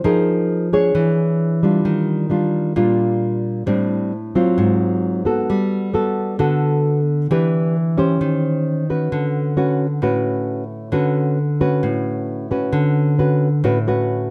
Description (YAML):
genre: bossa nova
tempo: 132 BPM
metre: 4/4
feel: straight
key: D major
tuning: A4 = 439 Hz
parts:
  - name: nylon-string guitar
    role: solo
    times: 0.0-14.3 s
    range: G#2 to C#5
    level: -19 LUFS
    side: equal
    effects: none
room: moderate echo chamber reverb, RT60 1.8 s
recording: dark, warm production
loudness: -19 LUFS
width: mono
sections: 0.0-12.7 A section; 12.7-14.3 B section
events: none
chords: 0.0 Fm7; 0.9 E6; 1.9 Ebmaj9; 3.7 Am7; 4.6 G#6; 5.5 Gmaj9; 7.3 Em7; 8.2 Eb6; 9.1 D6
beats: | 0.04 0.49 0.94 1.40 | 1.85 2.30 2.76 3.21 | 3.67 4.12 4.57 5.03 | 5.48 5.93 6.38 6.84 | 7.29 7.75 8.20 8.65 | 9.11 9.56 10.01 10.47 | 10.92 11.37 11.83 12.28 | 12.73 13.19 13.64 14.09